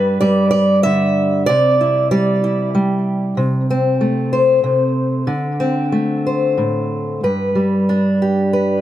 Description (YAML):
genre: folk, solo fingerstyle acoustic guitar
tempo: 94 BPM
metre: 3/4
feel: rubato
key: G major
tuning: A4 = 438 Hz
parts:
  - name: fingerpicked steel-string acoustic guitar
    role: solo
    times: 0.0-8.8 s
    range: G2 to E5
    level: -14 LUFS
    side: equal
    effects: tape echo
room: light reverb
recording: none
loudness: -14 LUFS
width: side -12 dB against mid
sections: 0.0-7.2 A section; 7.2-8.8 B section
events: none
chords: 0.0 G; 1.5 Cadd9; 3.4 Am/C; 5.3 D5; 7.2 G